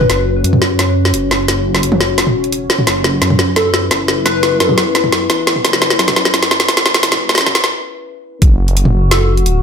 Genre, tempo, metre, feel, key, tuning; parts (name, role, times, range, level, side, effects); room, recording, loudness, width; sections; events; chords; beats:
half-time drum and bass; 173 BPM; 4/4; half-time; F# minor; A4 = 440 Hz
plucky unison lead; melody; 0.0-0.3, 3.6-4.7, 9.1-9.3 s; A4 to B4; -19 LUFS; left 1 dB; ping-pong delay
deep dark ambient pad; sustained chords; 0.0-9.6 s; C#4 to C#5; -19 LUFS; left 2 dB; chorus, built-in reverb, sidechain pumping
dark detuned saw bass; bass; 0.0-9.6 s; E1 to F#2; -18 LUFS; equal
drum and bass drum kit; drums; 0.0-9.5 s; hi-hat, snare drum, toms; -13 LUFS; equal
electronic kick drum; drums; 8.4-8.5 s; -8 LUFS; equal
metallic inharmonic drone; texture; 8.6-9.6 s; F#4; -21 LUFS; left 4 dB; chorus, built-in reverb
moderate digital room reverb, RT60 0.9 s, digital ambience; high-pass filter; -11 LUFS; side -7 dB against mid
0.0-8.4 A section; 8.4-9.6 B section
build-up 0.0-8.4; drum fill 0.0-7.7; filter sweep 0.0-8.4; break 7.7-8.4; drop 8.4-9.6
0.0 F#5
| 0.10 0.44 0.79 1.14 | 1.48 1.83 2.18 2.52 | 2.87 3.22 3.56 3.91 | 4.26 4.61 4.95 5.30 | 5.64 5.99 6.34 6.69 | 7.03 7.38 7.73 8.07 | 8.42 8.77 9.11 9.46